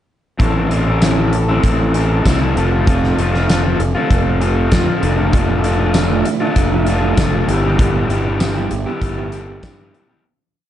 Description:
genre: indie rock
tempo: 98 BPM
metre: 4/4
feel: straight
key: A minor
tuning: A4 = 442 Hz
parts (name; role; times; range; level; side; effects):
- raw garage guitar; riff; 0.4-10.2 s; A2 to G4; -18 LUFS; left 1 dB; overdrive
- fuzz fingered electric bass; bass; 0.4-9.9 s; F1 to G2; -18 LUFS; equal; overdrive
- big rock drum kit; drums; 0.4-10.1 s; hi-hat, kick drum, snare drum, tambourine; -19 LUFS; equal; none
- electric guitar through a small old amp; riff; 5.5-9.8 s; F3 to G4; -24 LUFS; right 10 dB; analog chorus, tape echo
room: little or no reverb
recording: dark, warm production, nothing above 10.5 kHz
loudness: -13 LUFS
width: side -11 dB against mid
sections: 0.4-10.2 verse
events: fade-out 7.8-10.2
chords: 0.4 Am; 2.6 F; 5.0 Dmadd9/F; 7.5 Em/G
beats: | 0.40 1.02 1.63 2.25 | 2.87 3.48 4.10 4.72 | 5.33 5.95 6.56 7.18 | 7.79 8.40 9.02 9.63

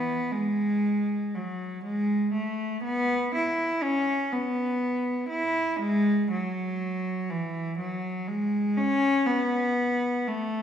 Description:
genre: classical, baroque-style suite movement for unaccompanied cello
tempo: 60 BPM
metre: 3/4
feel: rubato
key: E major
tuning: A4 = 438 Hz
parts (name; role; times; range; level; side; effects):
- rich cello; solo; 0.0-10.6 s; E3 to E4; -25 LUFS; equal; none
room: wet recital hall reverb, RT60 1.4 s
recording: recorded in a church or concert hall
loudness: -25 LUFS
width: side -9 dB against mid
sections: 0.0-10.6 A section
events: none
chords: none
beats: 0.85 1.85 | 2.85 3.84 4.82 | 5.81 6.80 7.80 | 8.79 9.79

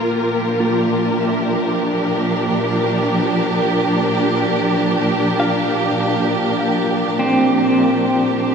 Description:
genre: ambient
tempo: 50 BPM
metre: 4/4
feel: straight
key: unclear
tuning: A4 = 440 Hz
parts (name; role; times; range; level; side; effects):
- warm studio string section; sustained chords; 0.0-8.5 s; Bb2 to Bb4; -16 LUFS; equal; low-pass filter
- clean electric guitar; arpeggios; 0.0-8.5 s; C4 to F5; -21 LUFS; equal; tremolo, diffuse ambient delay
room: wet cathedral reverb, RT60 5.6 s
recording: in a vast, echoing space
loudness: -15 LUFS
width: side -6 dB against mid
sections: 0.0-8.5 A section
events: none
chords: 0.0 Gm7/Bb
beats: 0.59 1.79 3.00 | 4.20 5.39 6.59 7.79

